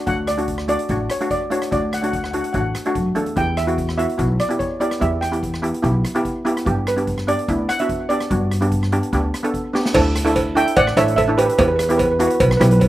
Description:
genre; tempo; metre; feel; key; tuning
calypso; 146 BPM; 4/4; straight; D major; A4 = 439 Hz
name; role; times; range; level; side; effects
steel pan; melody; 0.1-12.9 s; G4 to G5; -21 LUFS; right 2 dB; none
steel pan; accompaniment; 0.1-12.8 s; A3 to A4; -22 LUFS; equal; none
upright bass; bass; 0.1-12.9 s; A1 to G2; -21 LUFS; equal; none
street-band drum kit; drums; 0.1-12.9 s; crash cymbal, hi-hat, kick drum, rim click, snare drum; -28 LUFS; equal; none
cowbell; percussion; 9.9-12.9 s; none; -20 LUFS; right 1 dB; none
room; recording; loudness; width
little or no reverb; recorded outdoors, with no room sound; -17 LUFS; side -15 dB against mid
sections
0.0-9.9 A section; 9.9-12.9 B section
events
drum fill 9.7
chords
0.0 D; 3.4 Em; 6.7 G; 9.9 Dsus2; 11.6 Emadd9

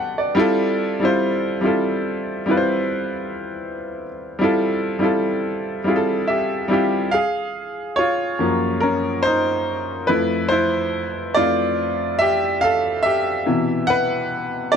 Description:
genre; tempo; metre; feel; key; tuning
R&B; 71 BPM; 4/4; swing 56% on 16ths; unclear; A4 = 440 Hz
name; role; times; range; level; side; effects
clear grand piano; solo; 0.0-14.8 s; F2 to A5; -18 LUFS; equal; none
room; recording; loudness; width
light reverb; none; -18 LUFS; side -7 dB against mid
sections
0.0-7.1 A section; 7.1-14.8 B section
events
grand piano solo 7.1-14.8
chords
0.4 Fmaj9; 7.1 F#maj9; 10.1 Fmaj9; 13.5 Cmaj7

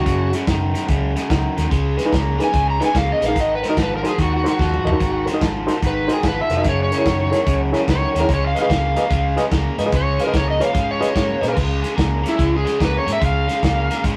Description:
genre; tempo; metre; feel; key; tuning
electric blues shuffle; 146 BPM; 4/4; swing 66% on 8ths; Db mixolydian; A4 = 440 Hz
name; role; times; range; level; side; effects
overdriven slide guitar; melody; 0.0-14.0 s; Fb4 to Bb5; -24 LUFS; equal; none
overdriven electric guitar; riff; 0.0-14.2 s; Gb2 to Bb3; -26 LUFS; equal; none
vintage muted fingered electric bass; bass; 0.1-14.2 s; F1 to Bb2; -25 LUFS; equal; none
warm soul drum kit; drums; 0.1-14.2 s; crash cymbal, hi-hat, kick drum, snare drum, toms; -25 LUFS; equal; none
overdriven reed electric piano; accompaniment; 2.0-11.6 s; Eb4 to F5; -24 LUFS; equal; fast tremolo
room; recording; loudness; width
moderate studio reverb, RT60 0.6 s; rough rehearsal-room recording; -19 LUFS; mono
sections
0.0-11.6 A section; 11.6-14.2 B section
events
electric slide guitar solo 0.0-11.6; drum fill 4.6-5.0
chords
0.0 Gb5; 1.7 Db7; 3.4 Ab7; 6.6 Gb7; 8.3 Db7; 11.6 Db

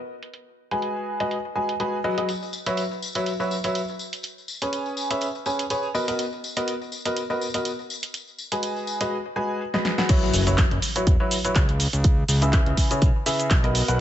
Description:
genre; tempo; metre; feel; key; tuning
piano house; 123 BPM; 4/4; swing 55% on 16ths; unclear; A4 = 440 Hz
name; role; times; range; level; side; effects
punchy analog drum machine; drums; 0.2-14.0 s; cabasa, crash cymbal, handclaps, hi-hat, snare drum; -27 LUFS; right 1 dB; low-pass filter on hats, low-pass filter on cymbals, low-pass filter on snare, low-pass filter on perc, low-pass filter on room
bright upright piano; riff; 0.7-14.0 s; C#3 to G#5; -25 LUFS; equal; sidechain pumping, low-pass filter, ping-pong delay
tambourine; percussion; 2.3-9.1 s; none; -35 LUFS; left 4 dB; none
electronic kick drum; drums; 10.1-13.6 s; none; -20 LUFS; equal; none
impact; sound effects; 10.2-12.0 s; none; -32 LUFS; equal; none
fat analog bass; bass; 10.3-14.0 s; E1 to C#2; -23 LUFS; equal; tube saturation, sidechain pumping
room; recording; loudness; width
light reverb; nothing above 8.0 kHz; -22 LUFS; side -11 dB against mid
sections
0.0-10.1 A section; 10.1-14.0 B section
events
filter sweep on drum 0.0-10.1; drum fill 9.7-10.1; drop 10.1-14.0; impact 10.1-12.0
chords
0.1 G#m7; 2.3 F#7sus4; 4.0 C#7(no3); 5.9 Bmaj7; 7.9 G#m7; 10.1 F#7sus4; 11.8 C#m7

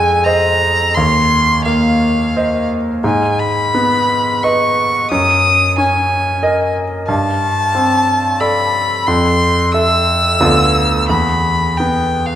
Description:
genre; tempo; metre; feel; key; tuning
classical, impressionist duo for violin and grand piano; 89 BPM; 3/4; uneven beats, rubato; unclear; A4 = 440 Hz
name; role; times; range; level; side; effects
rich violin; melody; 0.0-12.4 s; F5 to E6; -14 LUFS; left 1 dB; none
clear concert grand piano; accompaniment; 0.0-12.4 s; D2 to E5; -15 LUFS; right 1 dB; none
room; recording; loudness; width
wet recital hall reverb, RT60 1.7 s; none; -12 LUFS; side -11 dB against mid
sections
0.0-12.4 A section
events
none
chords
0.0 Fm7; 0.9 Ebsus2; 3.0 Abm; 5.1 Gb69; 7.1 Gsus24; 9.1 Fmaj7; 10.4 Dm6; 11.1 Em

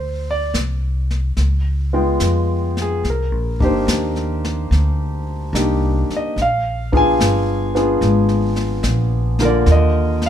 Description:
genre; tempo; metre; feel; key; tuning
jazz ballad; 72 BPM; 4/4; swing 67% on 8ths; unclear; A4 = 438 Hz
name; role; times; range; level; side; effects
warm concert grand piano; accompaniment; 0.0-10.3 s; D3 to Ab5; -19 LUFS; equal; none
upright bass; bass; 0.0-10.3 s; G1 to F2; -18 LUFS; equal; none
jazz brush drum kit; drums; 0.5-10.3 s; brushed snare drum, hi-hat, kick drum, snare drum; -24 LUFS; left 2 dB; none
room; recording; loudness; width
light reverb; minimal, uncompressed stereo recording; -16 LUFS; side -10 dB against mid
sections
0.0-10.3 A section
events
none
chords
0.0 Csus2; 1.4 Db7#11; 3.0 Cm7; 6.4 Bb7b9; 9.7 Ebmaj7sus2

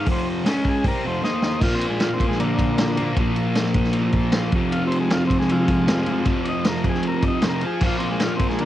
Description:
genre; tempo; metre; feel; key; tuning
garage rock duo or trio; 155 BPM; 4/4; straight; unclear; A4 = 440 Hz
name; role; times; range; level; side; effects
overdriven combo organ; melody; 0.0-8.7 s; D3 to Eb5; -26 LUFS; left 1 dB; cassette tape
thick fuzz guitar; riff; 0.0-8.7 s; F2 to Eb4; -21 LUFS; equal; distortion, cassette tape
vintage drum kit; drums; 0.1-8.7 s; crash cymbal, hi-hat, kick drum, ride cymbal, snare drum; -23 LUFS; equal; cassette tape
room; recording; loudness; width
little or no reverb; home recording on cassette; -19 LUFS; side -13 dB against mid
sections
0.0-1.6 A section; 1.6-8.7 B section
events
drum fill 1.2-1.6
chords
0.5 Db5; 0.8 F5; 1.2 Eb5; 1.6 Bb; 4.5 Fm; 7.8 Bb5

